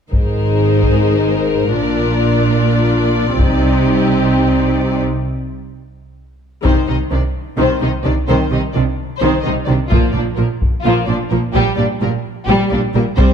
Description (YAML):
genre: cinematic, epic orchestral film score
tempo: 257 BPM (eighths)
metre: 7/8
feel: straight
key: C minor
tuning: A4 = 440 Hz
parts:
  - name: rich symphonic violin section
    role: second line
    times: 0.1-13.3 s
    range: G3 to D5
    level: -21 LUFS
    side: left 4 dB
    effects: none
  - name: rich studio viola section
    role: accompaniment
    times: 0.1-13.3 s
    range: Eb3 to Ab4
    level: -19 LUFS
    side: left 1 dB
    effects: none
  - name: rich symphonic cello section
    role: bass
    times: 0.1-13.3 s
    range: Ab2 to C3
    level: -20 LUFS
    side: right 2 dB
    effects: none
  - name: warm symphonic double bass section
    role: bass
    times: 0.1-13.3 s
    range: Ab1 to C2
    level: -19 LUFS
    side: right 3 dB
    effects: none
  - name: solo taiko drums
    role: drums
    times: 0.1-13.3 s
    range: none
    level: -17 LUFS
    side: left 1 dB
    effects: none
  - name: rich symphonic violin section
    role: melody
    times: 6.7-13.3 s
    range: F4 to Eb5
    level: -25 LUFS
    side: left 4 dB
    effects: none
room: moderate scoring stage reverb, RT60 1.8 s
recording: dark, warm production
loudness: -13 LUFS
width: side -7 dB against mid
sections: 0.1-6.7 A section; 6.7-13.3 B section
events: break 5.0-6.7; build-up 6.7-13.3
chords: 0.1 Abadd9; 1.8 Bb; 3.4 Cmadd9; 5.0 N.C.; 6.7 Cm; 9.9 Bb5; 11.6 Gm/Bb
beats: | 0.12 0.35 0.59 0.82 1.05 1.29 1.52 | 1.75 1.99 2.22 2.45 2.69 2.92 3.15 | 3.39 3.62 3.85 4.09 4.32 4.55 4.79 | 5.02 5.25 5.49 5.72 5.95 6.19 6.42 | 6.65 6.89 7.12 7.35 7.59 7.82 8.05 | 8.29 8.52 8.75 8.99 9.22 9.45 9.69 | 9.92 10.15 10.38 10.62 10.85 11.08 11.32 | 11.55 11.78 12.02 12.25 12.48 12.72 12.95 | 13.18